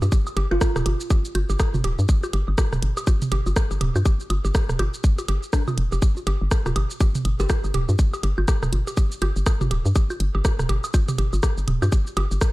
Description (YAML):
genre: minimal techno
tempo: 122 BPM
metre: 4/4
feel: swing 59% on 16ths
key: unclear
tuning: A4 = 436 Hz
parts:
  - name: mallet-like synth pluck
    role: riff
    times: 0.0-12.2 s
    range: D4 to G4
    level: -33 LUFS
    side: right 1 dB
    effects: chorus, sidechain pumping, digital delay
  - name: hollow knocking FM bass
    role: bass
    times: 0.0-12.4 s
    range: D1 to G2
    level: -22 LUFS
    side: equal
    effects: sidechain pumping
  - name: garage drum kit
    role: drums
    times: 0.0-12.5 s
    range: hi-hat, rim click, shaker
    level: -30 LUFS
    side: equal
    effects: studio reverb
  - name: electronic bongos, woodblock and toms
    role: percussion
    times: 0.0-12.3 s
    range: none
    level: -29 LUFS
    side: right 3 dB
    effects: studio reverb
  - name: electronic kick drum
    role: drums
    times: 0.1-12.5 s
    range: none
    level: -19 LUFS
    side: equal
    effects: studio reverb
  - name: kalimba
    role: melody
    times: 0.5-1.2, 7.4-7.6 s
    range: F4 to G4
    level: -32 LUFS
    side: right 2 dB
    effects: dub echo
room: little or no reverb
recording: dark, warm production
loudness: -20 LUFS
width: side -19 dB against mid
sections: 0.0-12.5 A section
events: none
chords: none